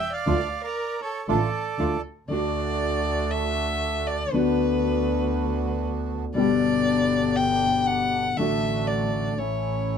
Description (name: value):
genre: tango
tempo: 118 BPM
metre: 4/4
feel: rubato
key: D major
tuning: A4 = 440 Hz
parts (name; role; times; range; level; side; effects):
- bandoneon; melody; 0.0-2.0 s; A4 to G5; -28 LUFS; right 6 dB; none
- rich violin; second line; 0.0-10.0 s; A4 to G5; -27 LUFS; left 2 dB; none
- nylon-string guitar; accompaniment; 0.3-9.4 s; B2 to G4; -25 LUFS; left 4 dB; none
- bandoneon; stabs; 0.3-10.0 s; A3 to G4; -33 LUFS; right 9 dB; none
- clear double bass; bass; 0.3-10.0 s; G1 to D2; -30 LUFS; right 3 dB; none
room: light reverb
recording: minimal, uncompressed stereo recording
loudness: -22 LUFS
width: side -7 dB against mid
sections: 0.0-2.3 A section; 2.3-10.0 B section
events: violin solo 2.3-10.0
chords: 0.3 Dm; 2.3 D; 4.3 Bm/D; 6.4 G; 8.4 D/A; 9.4 A